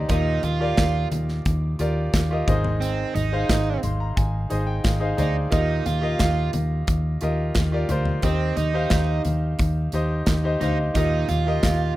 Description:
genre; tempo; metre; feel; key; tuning
piano-driven pop; 88 BPM; 4/4; straight; Eb major; A4 = 440 Hz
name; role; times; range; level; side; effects
clear concert grand piano; accompaniment; 0.0-12.0 s; Ab2 to C6; -27 LUFS; equal; none
vintage muted fingered electric bass; bass; 0.0-11.9 s; Ab1 to Eb2; -23 LUFS; equal; none
overdriven electric guitar; riff; 0.1-11.9 s; C4 to F4; -28 LUFS; right 8 dB; none
modern studio drum kit; drums; 0.1-11.8 s; hi-hat, kick drum, snare drum, toms; -25 LUFS; equal; none
room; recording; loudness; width
small room reverb; rough home demo mix; -20 LUFS; side -16 dB against mid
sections
0.0-12.0 A section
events
grand piano fill 3.5-5.5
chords
0.1 Ebadd9; 2.5 Ab; 5.5 Ebadd9; 8.2 Cm/Eb; 11.0 Ebadd9

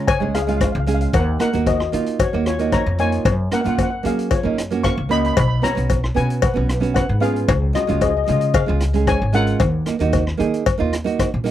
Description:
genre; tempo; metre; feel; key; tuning
calypso; 114 BPM; 4/4; straight; unclear; A4 = 440 Hz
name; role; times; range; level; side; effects
steel pan; melody; 0.0-11.2 s; E#4 to C#6; -23 LUFS; left 4 dB; slapback echo
nylon-string guitar; accompaniment; 0.0-11.5 s; G#3 to G#4; -22 LUFS; right 6 dB; none
upright bass; bass; 0.0-11.5 s; G#1 to F#3; -21 LUFS; equal; none
street-band drum kit; drums; 0.1-11.5 s; hi-hat, kick drum, rim click; -24 LUFS; equal; none
cowbell; percussion; 0.1-11.3 s; none; -22 LUFS; left 9 dB; none
room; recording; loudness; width
light reverb; dry, close 1970s-style studio recording; -16 LUFS; side -12 dB against mid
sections
0.0-11.5 A section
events
none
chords
0.0 C#; 1.1 D#m7; 3.3 F#maj7; 5.4 Bsus2; 7.5 C#; 9.6 D#m

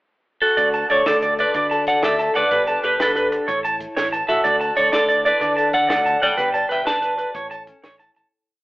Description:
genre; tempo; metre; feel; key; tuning
highlife guitar band; 124 BPM (dotted quarters); 12/8; straight; D major; A4 = 440 Hz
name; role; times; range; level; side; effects
clean electric guitar; melody; 0.4-7.5 s; D4 to A5; -19 LUFS; equal; phaser
picked old ladder-braced acoustic guitar; accompaniment; 0.6-8.6 s; A2 to D5; -30 LUFS; left 2 dB; none
electric guitar at the edge of break-up; arpeggios; 0.6-8.3 s; B4 to A5; -20 LUFS; right 1 dB; none
fingered electric bass; bass; 0.6-8.2 s; G1 to D3; -35 LUFS; equal; none
compact cocktail drum kit; drums; 0.6-8.2 s; hi-hat, kick drum, snare drum; -29 LUFS; equal; none
room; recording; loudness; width
moderate studio reverb, RT60 0.7 s; band playing live in one room, telephone sound; -16 LUFS; side -19 dB against mid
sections
0.0-0.6 pickup bar; 0.6-8.3 A section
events
fade-out 6.4-8.3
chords
0.0 N.C.; 0.6 D; 2.5 Gadd9; 3.5 A; 4.5 D; 6.4 Gadd9; 7.4 A

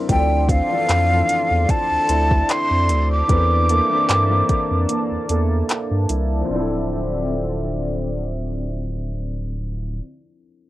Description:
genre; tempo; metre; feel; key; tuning
contemporary R&B; 75 BPM; 4/4; swing 54% on 16ths; D minor; A4 = 441 Hz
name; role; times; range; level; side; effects
warm baby grand piano; accompaniment; 0.0-10.7 s; E3 to C5; -28 LUFS; left 7 dB; low-pass filter
chorused pulse-width pad; sustained chords; 0.0-10.0 s; D3 to C6; -28 LUFS; left 2 dB; low-pass filter
fingerpicked acoustic archtop guitar; arpeggios; 0.0-10.1 s; D3 to A4; -28 LUFS; right 6 dB; low-pass filter, analog delay
breathy jazz flute; melody; 0.1-5.7 s; F5 to D6; -20 LUFS; equal; low-pass filter
saturated sub bass; bass; 0.1-10.0 s; D1 to G2; -21 LUFS; equal; none
smooth R&B drum kit; drums; 0.1-6.3 s; handclaps, hi-hat, kick drum; -21 LUFS; equal; overdrive, cassette tape
room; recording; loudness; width
light reverb; home recording on cassette; -17 LUFS; side -16 dB against mid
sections
0.1-6.5 A section; 6.5-9.7 B section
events
filter sweep 0.1-6.5; break 4.9-6.5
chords
0.1 Dm9; 3.3 C13/E; 6.5 Dm9

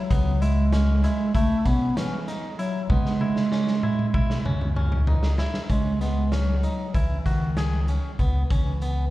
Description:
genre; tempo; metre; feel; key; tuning
progressive instrumental, band music in an uneven meter; 193 BPM (eighths); 9/8; straight; C# minor; A4 = 444 Hz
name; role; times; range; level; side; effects
mellow bass clarinet; melody; 0.0-9.1 s; D#3 to B3; -26 LUFS; right 1 dB; digital delay
clean electric guitar; arpeggios; 0.1-9.0 s; B3 to G#4; -34 LUFS; equal; slapback echo, digital delay
upright bass; bass; 0.1-9.1 s; B1 to C#3; -24 LUFS; equal; none
raw garage drum kit; drums; 0.1-9.0 s; hi-hat, kick drum, snare drum, toms; -27 LUFS; equal; none
room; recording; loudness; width
little or no reverb; live gig heard through the venue's PA, club reverb; -21 LUFS; side -16 dB against mid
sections
0.0-5.7 A section; 5.7-9.1 B section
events
drum fill 2.9-5.7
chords
0.0 E; 5.7 C#m7

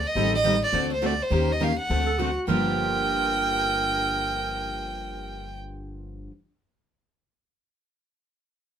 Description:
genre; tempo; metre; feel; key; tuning
acoustic string swing (jazz manouche); 206 BPM; 4/4; swing 58% on 8ths; G minor; A4 = 440 Hz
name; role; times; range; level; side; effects
rich violin; melody; 0.0-5.6 s; C5 to G5; -26 LUFS; right 1 dB; none
upright bass; bass; 0.0-6.3 s; G1 to Eb2; -32 LUFS; left 1 dB; none
picked steel-string acoustic guitar; accompaniment; 0.2-6.3 s; G2 to Bb4; -31 LUFS; left 5 dB; none
picked steel-string acoustic guitar; accompaniment; 0.2-6.3 s; G2 to Bb4; -31 LUFS; right 5 dB; none
growling clarinet; second line; 2.1-5.6 s; F#4 to Bb4; -29 LUFS; right 6 dB; none
room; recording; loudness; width
moderate studio ambience, RT60 0.5 s; minimal, uncompressed stereo recording; -22 LUFS; side -8 dB against mid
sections
0.0-2.5 A section; 2.5-4.8 B section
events
none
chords
0.1 Am7b5; 0.7 D7; 1.3 Eb7; 1.9 D7; 2.5 Gm7

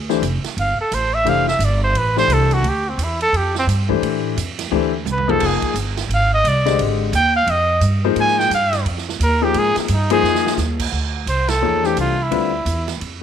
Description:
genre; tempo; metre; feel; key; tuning
modal jazz; 174 BPM; 4/4; swing 62% on 8ths; unclear; A4 = 440 Hz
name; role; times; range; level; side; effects
upright bass; bass; 0.0-13.2 s; F1 to A2; -21 LUFS; right 1 dB; none
warm baby grand piano; accompaniment; 0.1-12.5 s; D3 to Eb5; -20 LUFS; left 14 dB; none
swinging big-band drum kit; drums; 0.1-13.1 s; crash cymbal, hi-hat, kick drum, ride cymbal, snare drum, toms; -27 LUFS; right 9 dB; none
breathy trumpet; melody; 0.6-12.9 s; C4 to Ab5; -18 LUFS; right 2 dB; none
room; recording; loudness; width
moderate spring reverb, RT60 1.3 s, small room reverb; 1960s-style stereo with parts hard left and right; -16 LUFS; side -8 dB against mid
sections
0.0-10.9 A section; 10.9-13.2 B section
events
trumpet solo 0.0-10.9; drum fill 5.1-5.4, 10.2-10.6; band accent 11.4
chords
0.0 Dm9; 5.4 Fm9; 10.9 Dm9

